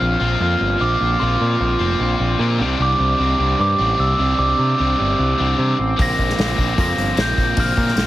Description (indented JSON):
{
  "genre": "indie rock",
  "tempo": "151 BPM",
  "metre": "4/4",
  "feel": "straight",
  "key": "unclear",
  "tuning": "A4 = 440 Hz",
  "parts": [
    { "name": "glockenspiel with rubber mallets", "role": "melody", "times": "0.0-8.1 s", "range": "C6 to Bb6", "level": "-20 LUFS", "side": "right 1 dB", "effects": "analog delay" },
    { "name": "crunchy overdriven guitar", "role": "riff", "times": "0.0-8.1 s", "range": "F3 to F4", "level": "-24 LUFS", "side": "left 6 dB", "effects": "none" },
    { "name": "crunchy overdriven guitar", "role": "riff", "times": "0.0-8.1 s", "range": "Bb2 to G4", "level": "-24 LUFS", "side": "right 4 dB", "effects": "analog chorus" },
    { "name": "growling picked electric bass", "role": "bass", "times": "0.0-8.1 s", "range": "F1 to C3", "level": "-20 LUFS", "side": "equal", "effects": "overdrive" },
    { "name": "unplugged drum kit", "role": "drums", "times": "6.0-8.1 s", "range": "hi-hat, kick drum, snare drum", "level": "-20 LUFS", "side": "equal", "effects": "none" }
  ],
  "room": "moderate spring reverb, RT60 1.6 s, small room ambience",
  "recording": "heavily compressed radio sound, multiband compression",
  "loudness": "-15 LUFS",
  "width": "side -15 dB against mid",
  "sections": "0.0-8.1 A section",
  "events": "none",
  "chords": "0.0 Bbsus2; 2.6 Csus2; 6.0 Bbsus2",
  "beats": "0.01 0.41 0.81 | 1.21 1.60 2.00 2.40 | 2.80 3.20 3.60 4.00 | 4.39 4.79 5.19 5.59 | 5.99 6.38 6.78 7.18 | 7.58 7.97"
}